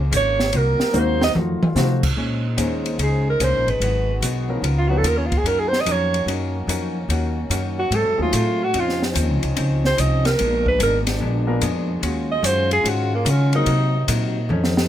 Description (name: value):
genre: jazz, big band swing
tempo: 146 BPM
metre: 4/4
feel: swing 66% on 8ths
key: Bb minor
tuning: A4 = 443 Hz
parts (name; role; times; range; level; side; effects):
- warm trombone section; sustained chords; 0.0-14.9 s; Bb2 to C5; -30 LUFS; left 1 dB; none
- upright bass; bass; 0.0-14.9 s; Ab1 to Db3; -22 LUFS; equal; none
- vintage hollow-body jazz guitar; accompaniment; 0.1-14.8 s; F2 to C5; -28 LUFS; left 3 dB; none
- open jazz drum kit; drums; 0.1-14.9 s; crash cymbal, hi-hat, kick drum, ride cymbal, snare drum, toms; -25 LUFS; left 1 dB; none
- warm alto saxophone; melody; 0.2-14.1 s; Bb3 to Eb5; -20 LUFS; right 2 dB; none
- warm concert grand piano; accompaniment; 0.9-5.0, 8.2-8.3, 11.5-13.7 s; F3 to C5; -26 LUFS; left 3 dB; none
room: light reverb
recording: close, detailed microphones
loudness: -18 LUFS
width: side -11 dB against mid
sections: 0.0-2.2 A section; 2.2-14.9 A section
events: alto saxophone solo 0.0-14.9; drum fill 0.9-1.8, 14.5-14.9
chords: 0.0 Bbm9; 0.5 Cm7b5; 1.4 F7b9; 2.2 Bbm11; 3.8 Abm7; 4.6 Db13; 5.5 Gb6; 7.1 Ebm7; 7.9 Ab7b9; 8.7 Dbmaj9; 10.4 Bb7b9; 12.0 Ebm11; 13.7 Cm7b5